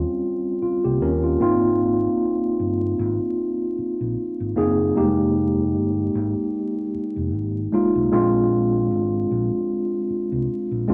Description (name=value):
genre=R&B, neo-soul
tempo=76 BPM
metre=4/4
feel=swing 56% on 16ths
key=F minor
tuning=A4 = 441 Hz
part: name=mellow tine electric piano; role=accompaniment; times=0.0-10.9 s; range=G3 to Bb4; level=-23 LUFS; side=equal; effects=none
part: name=fingered electric bass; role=bass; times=0.6-10.9 s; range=F1 to E2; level=-29 LUFS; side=equal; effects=none
room=moderate large studio reverb, RT60 0.9 s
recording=vinyl crackle, nothing above 10.7 kHz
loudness=-22 LUFS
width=mono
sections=0.0-10.9 A section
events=none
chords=0.0 Eb13; 1.4 Ab69; 5.0 Fm11; 8.1 Bb9